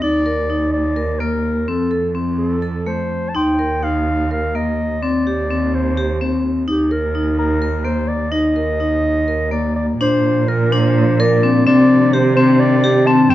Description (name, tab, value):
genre	contemporary instrumental, chamber music in an uneven meter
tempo	253 BPM (eighths)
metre	7/8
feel	straight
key	Eb lydian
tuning	A4 = 439 Hz
part	warm clarinet	melody	0.0-13.3 s	G4 to A5	-21 LUFS	left 1 dB	none
part	vibraphone with hard mallets	arpeggios	0.0-13.3 s	A3 to Bb4	-17 LUFS	left 2 dB	none
part	rich cello	bass	0.0-13.3 s	Eb2 to C3	-20 LUFS	right 4 dB	none
part	small celesta	texture	3.4-8.5 s	Bb5 to C6	-30 LUFS	left 5 dB	none
part	warbly tape-like pad	sustained chords	10.5-13.3 s	Eb3 to A4	-22 LUFS	right 2 dB	chorus, built-in reverb
room	light reverb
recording	dark, warm production, nothing above 7.8 kHz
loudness	-14 LUFS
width	side -14 dB against mid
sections	0.0-10.0 A section; 10.0-13.3 B section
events	none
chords	0.0 Eb5; 1.7 F; 3.3 Eb; 5.0 Cmadd9/Eb; 6.7 Eb5; 10.0 Bb; 11.7 Cmadd9